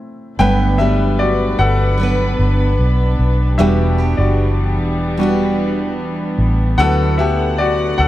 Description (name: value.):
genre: pop ballad.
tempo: 75 BPM.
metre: 4/4.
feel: straight.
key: G major.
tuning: A4 = 444 Hz.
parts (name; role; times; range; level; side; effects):
clear baby grand piano; accompaniment; 0.0-8.1 s; G3 to G5; -19 LUFS; left 3 dB; none.
dark studio string section; sustained chords; 0.4-8.1 s; D3 to F#5; -23 LUFS; left 1 dB; none.
picked steel-string acoustic guitar; arpeggios; 0.4-8.1 s; G2 to B4; -21 LUFS; right 5 dB; none.
vintage muted fingered electric bass; bass; 0.4-8.1 s; E1 to D2; -16 LUFS; equal; none.
room: light reverb.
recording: dark, warm production.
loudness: -13 LUFS.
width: side -14 dB against mid.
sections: 0.4-8.1 A section.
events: stop 0.0-0.4; grand piano solo 0.4-8.1.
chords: 0.4 Gmaj7; 3.6 Em7; 6.8 D6.